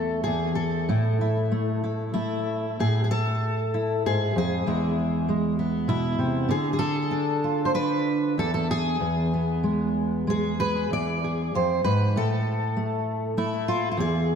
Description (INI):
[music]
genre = folk, solo fingerstyle acoustic guitar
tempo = 96 BPM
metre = 3/4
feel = rubato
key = unclear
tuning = A4 = 441 Hz
[part]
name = fingerpicked steel-string acoustic guitar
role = solo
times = 0.0-14.4 s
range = E2 to D5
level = -23 LUFS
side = equal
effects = wide subtle chorus, ping-pong delay
[sound]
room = wet lush hall reverb, RT60 1.9 s, studio ambience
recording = dreamy mix soaked in reverb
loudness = -23 LUFS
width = side -7 dB against mid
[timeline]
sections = 0.0-2.8 A section; 2.8-14.4 A section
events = none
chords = 0.3 N.C.; 0.9 A5; 4.7 E; 6.5 Dm; 8.4 N.C.; 9.0 E; 12.2 N.C.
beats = 0.26 | 0.88 1.50 2.15 | 2.80 3.43 4.05 | 4.67 5.28 5.89 | 6.49 7.11 7.74 | 8.37 9.01 9.65 | 10.28 10.92 11.54 | 12.15 12.76 13.37 | 13.98